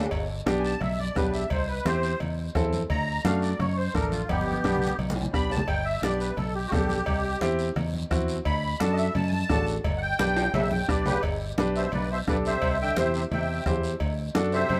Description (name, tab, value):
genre	latin, cumbia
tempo	173 BPM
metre	4/4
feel	straight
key	G major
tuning	A4 = 440 Hz
part	fingered electric bass	bass	0.0-14.8 s	G1 to F#2	-32 LUFS	equal	none
part	timbales and cowbell	percussion	0.0-14.8 s	none	-38 LUFS	equal	none
part	bombo	percussion	0.1-14.5 s	none	-34 LUFS	equal	none
part	congas	percussion	0.1-14.8 s	none	-36 LUFS	equal	none
part	guiro	percussion	0.1-14.8 s	none	-46 LUFS	equal	none
part	bright upright piano	accompaniment	0.5-14.6 s	A3 to C5	-32 LUFS	equal	none
part	musette accordion	melody	0.6-14.8 s	B3 to B5	-32 LUFS	equal	none
part	bright trombone	second line	11.8-14.8 s	G2 to D3	-40 LUFS	equal	none
room	light reverb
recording	none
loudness	-26 LUFS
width	mono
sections	0.1-11.2 A section; 11.2-14.8 B section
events	accordion solo 0.1-11.2; drum fill 4.3-5.7, 10.4-11.2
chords	0.1 G; 1.5 C; 2.9 D; 4.3 G; 7.1 C; 8.5 D; 9.8 G; 12.6 C; 14.0 D7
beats	| 0.12 0.47 0.81 1.16 | 1.51 1.86 2.21 2.55 | 2.90 3.25 3.60 3.94 | 4.29 4.64 4.99 5.33 | 5.68 6.03 6.38 6.72 | 7.07 7.42 7.76 8.11 | 8.46 8.81 9.15 9.50 | 9.85 10.19 10.54 10.89 | 11.23 11.58 11.93 12.27 | 12.62 12.97 13.31 13.66 | 14.01 14.35 14.70